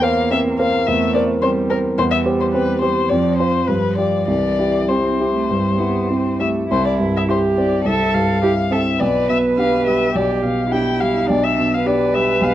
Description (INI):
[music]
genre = quick classical-period movement for piano trio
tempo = 96-109 BPM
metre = 4/4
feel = rubato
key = C major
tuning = A4 = 440 Hz
[part]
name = muted violin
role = melody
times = 0.0-12.5 s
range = Bb4 to G5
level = -21 LUFS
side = left 5 dB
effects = none
[part]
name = muted cello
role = second line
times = 0.0-12.5 s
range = E3 to B4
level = -22 LUFS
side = right 4 dB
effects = none
[part]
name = warm baby grand piano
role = accompaniment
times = 0.0-12.5 s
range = B1 to C5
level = -18 LUFS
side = right 1 dB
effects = none
[sound]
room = moderate large studio reverb, RT60 1.2 s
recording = worn, warbling old tape, cassette tape, warbly pitch drift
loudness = -15 LUFS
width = side -12 dB against mid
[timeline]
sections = 0.0-6.7 A section; 6.7-12.5 B section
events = none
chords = 0.0 C7/E; 2.0 C/E; 3.1 Dm7/F; 3.7 G7; 4.3 C; 9.0 G/B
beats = 0.32 0.88 1.43 | 1.99 2.54 3.10 3.68 | 4.28 4.88 5.49 6.09 | 6.70 7.29 7.86 8.43 | 9.01 9.57 10.14 10.71 | 11.29 11.85 12.42